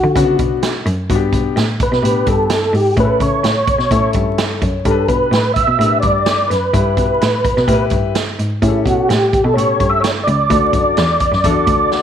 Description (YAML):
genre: uptempo 1960s-style soul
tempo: 128 BPM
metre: 4/4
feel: straight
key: unclear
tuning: A4 = 440 Hz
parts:
  - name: mellow tonewheel organ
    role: melody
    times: 0.0-12.0 s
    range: E4 to E5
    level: -15 LUFS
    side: right 1 dB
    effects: chorus vibrato, slow rotary speaker
  - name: rich cello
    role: bass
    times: 0.0-12.0 s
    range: C#2 to D3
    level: -18 LUFS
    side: equal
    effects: none
  - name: warm concert grand piano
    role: accompaniment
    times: 0.2-12.0 s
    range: B3 to F#5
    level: -21 LUFS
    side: left 10 dB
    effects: none
  - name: swinging big-band drum kit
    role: drums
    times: 0.2-12.0 s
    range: hi-hat, kick drum, snare drum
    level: -20 LUFS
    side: right 2 dB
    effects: none
room: light reverb, small room ambience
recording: 1960s-style stereo, vinyl crackle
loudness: -12 LUFS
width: side -9 dB against mid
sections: 0.0-12.0 A section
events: grand piano fill 11.4-12.0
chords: 0.0 Bm; 1.1 G; 3.0 A; 4.9 G; 6.7 Em/G; 8.6 A7; 10.5 D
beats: 0.15 0.62 | 1.09 1.56 2.03 2.50 | 2.97 3.44 3.91 4.38 | 4.85 5.32 5.79 6.26 | 6.73 7.20 7.67 8.14 | 8.62 9.09 9.56 10.03 | 10.50 10.97 11.44 11.91